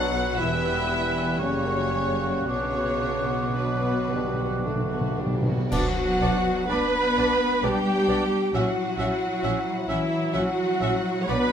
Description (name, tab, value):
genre	classical, slow romantic movement for symphony orchestra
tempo	54-67 BPM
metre	3/4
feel	rubato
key	B minor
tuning	A4 = 439 Hz
part	warm studio violin section	melody	0.0-11.5 s	B4 to B5	-33 LUFS	left 3 dB	none
part	clear clarinet	second line	0.0-11.5 s	A#3 to D4	-36 LUFS	left 1 dB	none
part	concert flute	second line	0.0-11.5 s	E5 to D6	-32 LUFS	equal	none
part	mellow oboe	second line	0.0-11.4 s	F#4 to E5	-34 LUFS	right 2 dB	none
part	warm studio violin section	second line	0.0-11.4 s	A#3 to F#5	-36 LUFS	left 2 dB	none
part	dark bassoon	accompaniment	0.0-11.4 s	F#3 to B3	-33 LUFS	right 2 dB	none
part	dark studio viola section	accompaniment	0.0-11.5 s	B3 to C#5	-28 LUFS	right 1 dB	none
part	mellow French horn section	sustained chords	0.0-11.5 s	B2 to E4	-31 LUFS	left 4 dB	none
part	warm studio cello section	bass	0.0-11.5 s	E2 to B3	-30 LUFS	equal	none
part	warm studio double bass section	bass	0.0-11.4 s	E1 to B1	-33 LUFS	right 4 dB	none
part	timpani	percussion	0.0-5.7 s	B2	-30 LUFS	equal	none
part	cymbal swell, clash cymbals and concert bass drum	percussion	2.5-7.6 s	none	-35 LUFS	equal	none
room	moderate concert hall reverb, RT60 2.0 s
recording	none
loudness	-22 LUFS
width	side -8 dB against mid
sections	0.0-5.7 A section; 5.7-11.5 B section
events	timpani fill 2.5-5.7; band accent 5.7-6.7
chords	0.4 Em; 1.4 F#; 2.5 Bm; 8.5 F#7/A#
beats	0.39 1.40 | 2.48 3.58 4.66 | 5.72 6.71 7.64 | 8.54 9.44 10.34 | 11.29